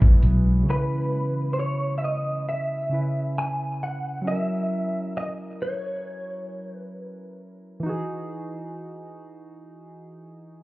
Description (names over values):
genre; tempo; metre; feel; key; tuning
contemporary R&B; 67 BPM; 4/4; swing 54% on 16ths; unclear; A4 = 440 Hz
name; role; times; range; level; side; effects
direct-recorded clean electric guitar; melody; 0.0-7.4 s; B4 to G#5; -30 LUFS; equal; ensemble chorus, digital delay
soft electric-piano-like synth keys; accompaniment; 0.0-10.6 s; C#3 to B4; -30 LUFS; right 1 dB; chorus
ethereal airy pad; sustained chords; 0.0-0.7 s; B3 to F#4; -35 LUFS; equal; none
dusty soul sampler-style drum kit; drums; 0.0-0.5 s; hi-hat, kick drum; -14 LUFS; equal; none
vintage muted fingered electric bass; bass; 0.2-0.6 s; B1; -18 LUFS; equal; none
room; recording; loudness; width
light reverb, digital ambience; heard muffled through a wall, club reverb, EQ; -24 LUFS; side -20 dB against mid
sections
0.7-10.6 A section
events
none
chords
0.0 F#9sus4; 0.7 C#m7; 4.3 F#7; 7.8 Emaj9